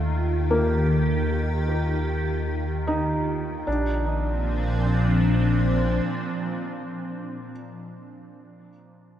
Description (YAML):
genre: ambient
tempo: 76 BPM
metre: 4/4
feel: straight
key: Bb major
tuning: A4 = 439 Hz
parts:
  - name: evolving wavetable pad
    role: sustained chords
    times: 0.0-7.6 s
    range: Bb2 to G4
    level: -25 LUFS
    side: equal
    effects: ensemble chorus, built-in reverb, phaser
  - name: felt-muted upright piano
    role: arpeggios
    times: 0.0-9.2 s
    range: A3 to Eb4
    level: -29 LUFS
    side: equal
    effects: diffuse ambient delay
  - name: warm sub bass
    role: bass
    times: 0.0-6.0 s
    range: Bb1 to Eb2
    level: -27 LUFS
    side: equal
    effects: none
room: wet cathedral reverb, RT60 5.1 s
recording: dark, warm production, nothing above 10.5 kHz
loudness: -22 LUFS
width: side -10 dB against mid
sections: 0.0-3.7 A section; 3.7-6.8 B section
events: none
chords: 0.0 Eb; 3.7 Bb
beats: | 0.52 1.30 2.09 2.88 | 3.67 4.46 5.25 6.04